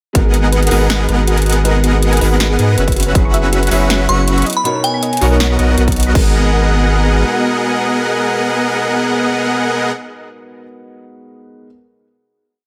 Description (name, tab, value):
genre	future bass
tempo	160 BPM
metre	4/4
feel	swing 54% on 16ths, half-time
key	G# minor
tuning	A4 = 440 Hz
part	warm concert grand piano	accompaniment	0.1-11.7 s	B2 to D#5	-24 LUFS	equal	sidechain pumping, tape echo
part	airy breathy pad	sustained chords	0.1-9.9 s	F#3 to A#5	-28 LUFS	equal	none
part	thumb-piano-like synth pluck	arpeggios	0.1-6.3 s	F#4 to C#6	-27 LUFS	equal	chorus, cassette tape, sidechain pumping, tape echo
part	saturated sub bass	bass	0.1-7.2 s	F#1 to G#2	-17 LUFS	equal	sidechain pumping
part	big-room dance drum kit	drums	0.1-6.2 s	crash cymbal, hi-hat, snare drum	-23 LUFS	equal	small room reverb
part	electronic kick drum	drums	0.1-0.2, 2.9-3.2, 5.9-6.2 s	none	-16 LUFS	equal	small room reverb
part	dense compressed supersaw	riff	0.2-9.9 s	B3 to F#5	-19 LUFS	equal	cassette tape, sidechain pumping
part	glassy synth bell	melody	4.1-5.2 s	G#5 to C#6	-20 LUFS	equal	chorus, sidechain pumping
room	light reverb, digital ambience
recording	none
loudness	-14 LUFS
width	mono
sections	0.2-6.2 drop; 6.2-9.2 final chord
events	drop 0.2-6.2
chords	0.2 G#m9; 3.0 F#7sus4; 4.5 Bmaj7; 6.2 G#m9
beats	| 0.15 0.53 0.90 1.28 | 1.65 2.03 2.40 2.78 | 3.15 3.53 3.90 4.28 | 4.65 5.03 5.40 5.78 | 6.15 6.53 6.90 7.28 | 7.65 8.03 8.40 8.78